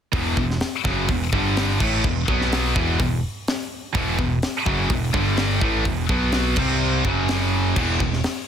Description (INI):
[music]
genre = heavy metal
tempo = 126 BPM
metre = 4/4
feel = straight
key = E minor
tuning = A4 = 440 Hz
[part]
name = overdriven electric guitar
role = riff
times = 0.1-8.2 s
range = E2 to C4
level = -27 LUFS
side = equal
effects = none
[part]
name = scooped high-gain guitar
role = riff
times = 0.1-8.2 s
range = E2 to C4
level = -26 LUFS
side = left 11 dB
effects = distortion
[part]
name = scooped high-gain guitar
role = riff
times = 0.1-8.2 s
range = E2 to C4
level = -26 LUFS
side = right 10 dB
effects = distortion
[part]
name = overdriven picked electric bass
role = bass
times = 0.1-8.2 s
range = E1 to C2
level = -25 LUFS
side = equal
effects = none
[part]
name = tight metal drum kit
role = drums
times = 0.1-8.4 s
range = crash cymbal, hi-hat, kick drum, snare drum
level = -25 LUFS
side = equal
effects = none
[sound]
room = little or no reverb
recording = dense, heavily limited modern master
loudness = -19 LUFS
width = side -8 dB against mid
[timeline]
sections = 0.1-8.5 A section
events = none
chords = 0.1 E5; 1.3 G5; 1.8 E5; 2.3 B5; 2.8 E5; 5.1 G5; 5.6 E5; 6.1 B5; 6.6 C5; 7.0 F#5; 7.8 E5